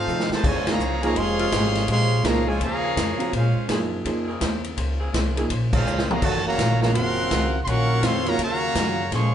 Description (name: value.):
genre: jazz, big band swing.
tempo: 166 BPM.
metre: 4/4.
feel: swing 64% on 8ths.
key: Bb minor.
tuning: A4 = 440 Hz.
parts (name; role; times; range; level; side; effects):
bright trumpet section; melody; 0.0-9.3 s; Db4 to Db6; -26 LUFS; equal; none.
warm trombone section; second line; 0.0-9.3 s; C3 to F4; -27 LUFS; equal; none.
warm concert grand piano; accompaniment; 0.0-8.4 s; F3 to Bb4; -28 LUFS; right 2 dB; none.
upright bass; bass; 0.0-9.3 s; F1 to C3; -25 LUFS; equal; none.
vintage hollow-body jazz guitar; accompaniment; 0.1-9.3 s; Eb3 to C5; -33 LUFS; left 2 dB; none.
swinging big-band drum kit; drums; 0.1-9.2 s; crash cymbal, hi-hat, kick drum, ride cymbal, snare drum, toms; -26 LUFS; equal; none.
warm saxophone section; sustained chords; 1.0-8.4 s; Db3 to Ab4; -33 LUFS; equal; none.
room: wet club reverb, RT60 0.7 s.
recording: heard from further back in the room, nothing above 10.5 kHz.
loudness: -20 LUFS.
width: side -9 dB against mid.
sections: 0.4-9.3 A section.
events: drum fill 0.1-0.4, 5.9-6.2; band accent 0.6, 5.7.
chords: 0.4 Bbm9; 6.2 Ebm9.